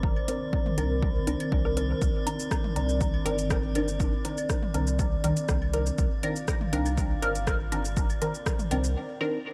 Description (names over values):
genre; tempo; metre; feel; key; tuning
dub techno; 121 BPM; 4/4; straight; C minor; A4 = 441 Hz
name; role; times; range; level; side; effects
dark analog pad; sustained chords; 0.0-9.0 s; Eb3 to F5; -36 LUFS; equal; chorus, phaser, sidechain pumping
soft dub sub bass; bass; 0.0-9.0 s; G1 to C2; -32 LUFS; equal; sidechain pumping
electronic kick drum; drums; 0.0-8.6 s; none; -31 LUFS; equal; overdrive
metallic inharmonic drone; texture; 0.0-9.0 s; D5; -43 LUFS; equal; chorus, built-in reverb, phaser, sidechain pumping
electronic claves and toms; percussion; 0.2-8.8 s; none; -41 LUFS; equal; overdrive, sidechain pumping on perc, sidechain pumping on toms, dub echo
filtered dub chord stab; stabs; 0.3-9.4 s; Eb3 to Bb4; -34 LUFS; equal; phaser, cassette tape, sidechain pumping, dub echo
deep house drum kit; drums; 0.3-8.9 s; hi-hat, rim click, shaker; -38 LUFS; equal; overdrive, dub echo
room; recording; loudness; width
light reverb; vinyl crackle; -28 LUFS; mono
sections
0.0-9.5 A section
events
break 9.0-9.5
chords
0.0 Cm9